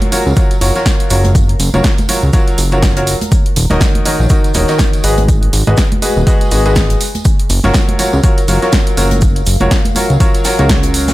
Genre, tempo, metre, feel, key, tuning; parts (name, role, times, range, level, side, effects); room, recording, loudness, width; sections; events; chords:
piano house; 122 BPM; 4/4; swing 58% on 16ths; F# major; A4 = 439 Hz
bright grand piano; riff; 0.0-11.1 s; D#3 to D#5; -17 LUFS; equal; sidechain pumping, analog delay
punchy analog drum machine; drums; 0.0-11.1 s; hi-hat, snare drum; -20 LUFS; right 1 dB; overdrive, studio ambience
congas and tambourine; percussion; 0.0-11.1 s; -23 LUFS; right 2 dB
warbly tape-like pad; texture; 0.1-11.1 s; D#4 to A#5; -29 LUFS; left 4 dB
crisp fusion drum kit; drums; 0.1-11.1 s; hi-hat, shaker, snare drum; -26 LUFS; left 1 dB; high-pass filter on hats, studio ambience, high-pass filter on snare, high-pass filter on perc, high-pass filter on room
fat analog bass; bass; 0.3-11.1 s; D#1 to C#2; -13 LUFS; equal; sidechain pumping
electronic kick drum; drums; 0.4-10.8 s; -13 LUFS; equal; overdrive, studio ambience
light reverb; -10 LUFS; side -17 dB against mid
0.0-11.1 A section
0.0 F#maj7; 3.3 D#m7; 5.0 G#m7; 7.0 F#maj7